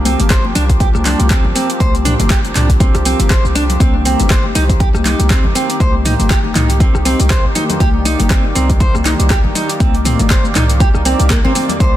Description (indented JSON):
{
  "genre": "afro house",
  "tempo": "120 BPM",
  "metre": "4/4",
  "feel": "swing 57% on 16ths",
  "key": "C minor",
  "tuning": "A4 = 441 Hz",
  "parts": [
    { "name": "warm analog pad", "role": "sustained chords", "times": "0.0-12.0 s", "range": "Eb3 to D5", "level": "-22 LUFS", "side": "right 2 dB", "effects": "chorus, vintage 12-bit sampler grit, sidechain pumping" },
    { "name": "warm 808-style bass", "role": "bass", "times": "0.0-12.0 s", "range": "G1 to C2", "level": "-16 LUFS", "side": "equal", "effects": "sidechain pumping" },
    { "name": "nylon-string guitar", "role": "arpeggios", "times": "0.1-11.9 s", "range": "Bb3 to C5", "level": "-18 LUFS", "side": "right 1 dB", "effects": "sidechain pumping, ping-pong delay" },
    { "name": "deep house drum kit", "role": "drums", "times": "0.1-11.9 s", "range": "handclaps, hi-hat, rim click, shaker, toms", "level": "-20 LUFS", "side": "equal", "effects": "overdrive, small room ambience" },
    { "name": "congas", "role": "percussion", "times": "0.1-11.9 s", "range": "none", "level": "-22 LUFS", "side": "left 5 dB", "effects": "none" },
    { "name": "electronic kick drum", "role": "drums", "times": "0.3-11.9 s", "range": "none", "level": "-13 LUFS", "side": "equal", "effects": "overdrive, small room ambience" }
  ],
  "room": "little or no reverb",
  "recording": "dense, heavily limited modern master",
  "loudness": "-11 LUFS",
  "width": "side -13 dB against mid",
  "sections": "0.0-12.0 A section",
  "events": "none",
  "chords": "0.0 Gm7; 3.8 Cm7"
}